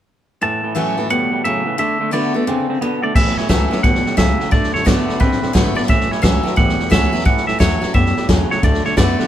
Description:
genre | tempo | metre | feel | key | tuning
rockabilly | 175 BPM | 4/4 | swing 64% on 8ths | A major | A4 = 440 Hz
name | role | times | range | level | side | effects
twangy electric guitar | melody | 0.4-9.3 s | B4 to A5 | -21 LUFS | equal | none
picked steel-string acoustic guitar | accompaniment | 0.4-9.3 s | E2 to F#4 | -21 LUFS | left 1 dB | none
twangy electric guitar | riff | 0.4-9.3 s | A2 to C4 | -22 LUFS | right 2 dB | none
upright bass | bass | 3.2-9.2 s | G#1 to B2 | -22 LUFS | left 1 dB | none
vintage drum kit | drums | 3.2-9.2 s | crash cymbal, hi-hat, kick drum, snare drum | -17 LUFS | equal | none
room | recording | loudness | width
moderate studio reverb, RT60 0.9 s | band playing live in one room | -14 LUFS | side -11 dB against mid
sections
0.4-3.2 A section; 3.2-9.3 B section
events
none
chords
0.4 A6; 1.8 D6; 3.2 A6; 4.5 D6; 5.9 A6; 8.6 D6

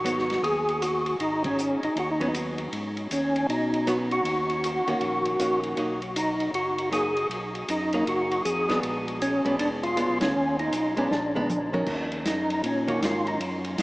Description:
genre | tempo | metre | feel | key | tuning
soul jazz organ trio | 158 BPM | 4/4 | swing 64% on 8ths | Eb minor | A4 = 440 Hz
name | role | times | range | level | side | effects
percussive tonewheel organ | melody | 0.0-13.4 s | Db4 to Ab4 | -25 LUFS | equal | slow rotary speaker, overdrive, chorus vibrato
archtop guitar, miked and amplified | accompaniment | 0.0-13.4 s | Eb3 to Bb4 | -32 LUFS | right 1 dB | none
tonewheel organ | bass | 0.0-13.8 s | F1 to Cb3 | -35 LUFS | equal | stopped rotary speaker
vintage drum kit | drums | 0.1-13.8 s | crash cymbal, hi-hat, kick drum, ride cymbal, snare drum, toms | -34 LUFS | equal | none
room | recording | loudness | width
wet huge ambient reverb, RT60 7.8 s | in a vast, echoing space, small speaker sound | -24 LUFS | side -21 dB against mid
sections
0.0-11.9 A section; 11.9-13.8 B section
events
band accent 1.4, 10.2; drum fill 11.1-11.9; tonewheel organ solo 11.9-13.8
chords
0.0 Abm7; 4.2 Ebm7; 5.8 Bmaj7; 8.8 Bb7b9; 10.3 B69; 11.1 Bb7b9; 11.9 Ebm7

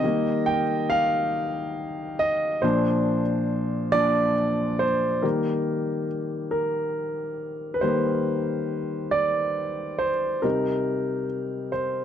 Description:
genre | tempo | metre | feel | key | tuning
pop | 46 BPM (dotted quarters) | 6/8 | straight | unclear | A4 = 440 Hz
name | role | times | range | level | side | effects
warm concert grand piano | solo | 0.0-12.0 s | Bb2 to G5 | -23 LUFS | equal | none
room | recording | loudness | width
light reverb | dry, close 1970s-style studio recording | -23 LUFS | side -9 dB against mid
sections
0.0-5.2 A section; 5.2-12.0 B section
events
grand piano solo 0.0-5.2, 5.2-12.0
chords
0.0 Eb; 2.6 Bbadd9; 5.2 Eb; 10.4 Cm

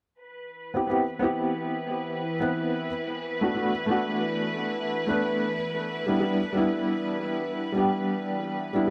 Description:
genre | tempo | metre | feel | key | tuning
trip hop | 90 BPM | 4/4 | swing 57% on 16ths | E minor | A4 = 437 Hz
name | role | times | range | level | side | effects
rich studio string section | sustained chords | 0.2-8.9 s | B4 | -35 LUFS | equal | low-pass filter
bowed-like drone | texture | 1.0-8.9 s | E3 to E4 | -40 LUFS | equal | built-in reverb, phaser
dark upright piano | accompaniment | 0.7-8.9 s | G3 to B4 | -28 LUFS | equal | tremolo, tape echo
room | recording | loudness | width
moderate spring reverb, RT60 1.3 s, small room ambience | echo-heavy mix | -28 LUFS | mono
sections
0.2-8.9 A section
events
none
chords
0.2 Cmaj7/E; 2.9 Bm7/E; 5.5 Em7

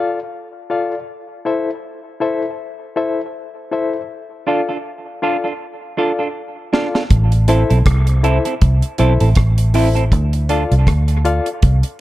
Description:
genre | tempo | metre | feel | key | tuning
dub reggae | 80 BPM | 4/4 | swing 57% on 16ths | A minor | A4 = 440 Hz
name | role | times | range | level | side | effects
reed electric piano | stabs | 0.0-11.5 s | E4 to F5 | -21 LUFS | left 4 dB | overdrive, fast tremolo, dub echo
semi-hollow electric guitar | accompaniment | 4.5-10.6 s | C4 to A4 | -23 LUFS | right 5 dB | dub echo
deep reggae drum kit | drums | 6.7-12.0 s | hi-hat, kick drum, rim click, snare drum | -17 LUFS | equal | none
vintage muted fingered electric bass | bass | 7.1-11.8 s | A1 to D2 | -14 LUFS | equal | none
room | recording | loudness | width
light reverb, small room ambience | dark, warm production | -14 LUFS | side -16 dB against mid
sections
0.0-7.1 A section; 7.1-12.0 B section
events
break 0.0-4.1; drum fill 5.6-7.1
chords
0.0 Dm; 1.1 Am; 4.1 Dm; 7.1 Am; 10.1 Dm

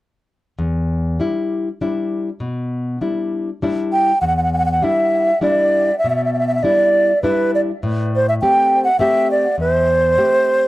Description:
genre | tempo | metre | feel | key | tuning
italian folk, Italian serenade | 100 BPM | 3/4 | swing 54% on 8ths, rubato | E minor | A4 = 441 Hz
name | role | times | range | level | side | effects
nylon-string guitar | accompaniment | 0.6-10.7 s | E2 to G4 | -20 LUFS | left 2 dB | none
wooden flute | melody | 3.9-10.7 s | B4 to G5 | -15 LUFS | right 1 dB | analog delay
room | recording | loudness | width
moderate small room reverb, RT60 0.5 s | dry, gritty hardware recording | -15 LUFS | side -17 dB against mid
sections
0.6-4.2 A section; 4.2-10.7 B section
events
none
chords
0.6 Em7; 7.8 Am7

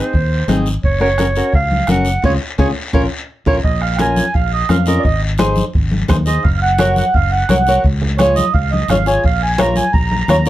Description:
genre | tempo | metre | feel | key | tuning
latin, cumbia | 172 BPM | 4/4 | straight | Bb minor | A4 = 440 Hz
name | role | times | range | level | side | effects
mellow clarinet | second line | 0.0-3.6 s | C5 to Gb5 | -19 LUFS | right 3 dB | none
flamenco guitar | accompaniment | 0.0-10.5 s | C4 to Db5 | -18 LUFS | left 1 dB | none
fingered electric bass | bass | 0.1-10.5 s | Gb1 to F2 | -18 LUFS | equal | none
bombo | percussion | 0.1-10.5 s | none | -18 LUFS | right 1 dB | none
congas | percussion | 0.1-10.5 s | none | -21 LUFS | left 1 dB | none
guiro | percussion | 0.1-10.5 s | none | -29 LUFS | left 4 dB | none
mellow accordion | melody | 3.6-10.5 s | Db5 to Bb5 | -18 LUFS | right 4 dB | none
room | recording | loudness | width
light reverb | dark, warm production | -13 LUFS | side -14 dB against mid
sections
0.0-3.6 A section; 3.6-10.5 B section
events
clarinet solo 0.0-3.6; band accent 2.2-3.6; drum fill 2.9-3.6; accordion solo 3.6-10.5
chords
0.0 Ab; 0.8 Gb; 2.2 Db; 2.9 Bbm; 5.0 Ab; 6.4 Gb; 7.8 Db; 9.2 Bbm

